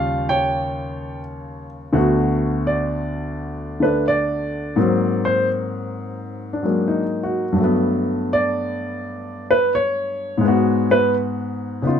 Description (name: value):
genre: solo jazz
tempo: 85 BPM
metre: 4/4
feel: swing 66% on 8ths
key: unclear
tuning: A4 = 440 Hz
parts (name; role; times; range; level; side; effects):
- warm baby grand piano; solo; 0.0-12.0 s; D2 to G5; -18 LUFS; left 1 dB; none
room: moderate studio reverb, RT60 0.6 s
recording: dark, warm production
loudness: -18 LUFS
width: side -8 dB against mid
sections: 0.0-1.9 A section; 1.9-12.0 B section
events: grand piano solo 1.9-12.0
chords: 0.0 Eb9; 1.9 D6; 4.8 G#9; 7.6 Gmaj9; 10.4 G#m7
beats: 0.52 1.23 | 1.94 2.64 3.35 4.06 | 4.76 5.47 6.18 6.88 | 7.59 8.30 9.01 9.71 | 10.42 11.13 11.84